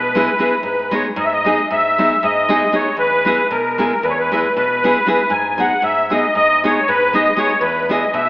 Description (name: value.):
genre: balkan folk.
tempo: 232 BPM (eighths).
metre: 9/8.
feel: straight.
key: G# minor.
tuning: A4 = 440 Hz.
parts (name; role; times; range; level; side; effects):
musette accordion; melody; 0.0-8.3 s; A#4 to G#5; -15 LUFS; left 1 dB; slapback echo.
nylon-string guitar; accompaniment; 0.0-8.3 s; E2 to G#4; -19 LUFS; equal; none.
room: wet concert hall reverb, RT60 2.0 s.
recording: AM radio sound.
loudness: -13 LUFS.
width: side -19 dB against mid.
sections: 0.0-8.3 A section.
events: none.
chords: 0.0 E; 0.6 G#m; 3.0 E; 5.3 G#m; 7.6 E.